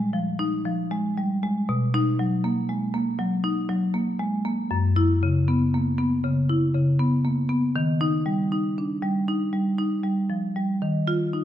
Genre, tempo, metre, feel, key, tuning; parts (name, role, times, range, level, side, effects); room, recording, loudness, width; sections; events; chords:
classical, contemporary piece for solo marimba; 79 BPM; 4/4; rubato; A4 = 440 Hz
marimba with medium hard mallets; solo; 0.0-11.4 s; Gb2 to F4; -22 LUFS; equal
moderate recital hall reverb, RT60 1.6 s; -22 LUFS; side -11 dB against mid
0.0-11.4 A section
0.0 Bb7sus4 (rootless); 1.7 Bmaj7; 4.7 Gb7sus4; 7.8 Eb; 10.8 F7(no3)/Eb